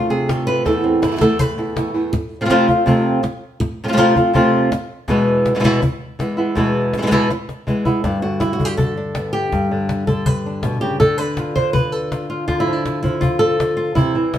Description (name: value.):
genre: flamenco.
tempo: 162 BPM.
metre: 4/4.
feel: straight.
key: unclear.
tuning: A4 = 441 Hz.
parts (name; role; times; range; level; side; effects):
flamenco guitar; melody; 0.0-14.4 s; E2 to C5; -16 LUFS; equal; none.
cajon; percussion; 0.1-14.4 s; none; -22 LUFS; left 1 dB; none.
flamenco guitar; stabs; 0.3-2.1, 14.0-14.4 s; E2 to F4; -21 LUFS; right 3 dB; none.
room: moderate stone room reverb, RT60 0.9 s.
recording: band playing live in one room.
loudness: -16 LUFS.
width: side -10 dB against mid.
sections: 0.0-2.1 A section; 2.1-8.0 B section; 8.0-14.4 C section.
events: nylon-string guitar solo 0.0-2.1; drum fill 7.3-8.0.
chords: 0.0 F6; 0.7 Esus4; 2.1 F; 5.1 E; 8.0 G; 11.0 Dm.